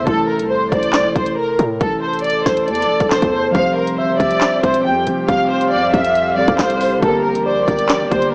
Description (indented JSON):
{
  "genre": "hip hop, drill",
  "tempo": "138 BPM",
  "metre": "4/4",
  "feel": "half-time",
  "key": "A phrygian",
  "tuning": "A4 = 442 Hz",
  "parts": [
    { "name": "dark symphonic violin section", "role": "melody", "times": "0.0-8.3 s", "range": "A4 to G5", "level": "-21 LUFS", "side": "equal", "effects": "cassette tape" },
    { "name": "breathy flute-like synth lead", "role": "second line", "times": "0.0-8.3 s", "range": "A4 to F5", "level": "-23 LUFS", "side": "equal", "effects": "chorus, tremolo, cassette tape, analog delay" },
    { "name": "muted felt-like synth keys", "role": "accompaniment", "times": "0.0-8.3 s", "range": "C3 to C5", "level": "-24 LUFS", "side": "equal", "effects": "chorus, cassette tape" },
    { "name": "hard-hitting 808-style bass", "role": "bass", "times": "0.0-8.3 s", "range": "E1 to A2", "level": "-27 LUFS", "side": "equal", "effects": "none" },
    { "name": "drill drum kit", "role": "drums", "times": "0.1-8.3 s", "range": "handclaps, hi-hat, kick drum, rim click, snare drum", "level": "-22 LUFS", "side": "equal", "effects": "cassette tape" },
    { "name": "airy breathy pad", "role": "sustained chords", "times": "4.6-8.3 s", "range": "D3 to G4", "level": "-26 LUFS", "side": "equal", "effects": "chorus, cassette tape" }
  ],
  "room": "light reverb, digital ambience",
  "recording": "home recording on cassette, small speaker sound",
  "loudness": "-16 LUFS",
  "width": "mono",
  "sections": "0.0-8.3 A section",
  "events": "none",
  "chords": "0.0 Am; 3.5 Fsus2; 7.0 Gm"
}